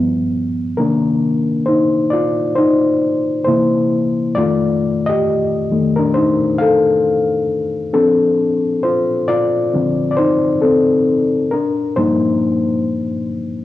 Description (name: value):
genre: R&B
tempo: 67 BPM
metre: 4/4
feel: swing 60% on 16ths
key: G minor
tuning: A4 = 440 Hz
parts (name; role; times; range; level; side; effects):
- reed electric piano; solo; 0.0-13.6 s; F2 to F5; -14 LUFS; left 2 dB; cassette tape
room: light reverb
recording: home recording on cassette, studio reverb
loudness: -14 LUFS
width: side -14 dB against mid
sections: 0.0-13.6 A section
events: reed electric piano solo 0.0-13.6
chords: 0.0 G7; 0.8 Cm9; 3.5 C7; 4.4 F9; 7.9 Dm7; 11.5 Gm7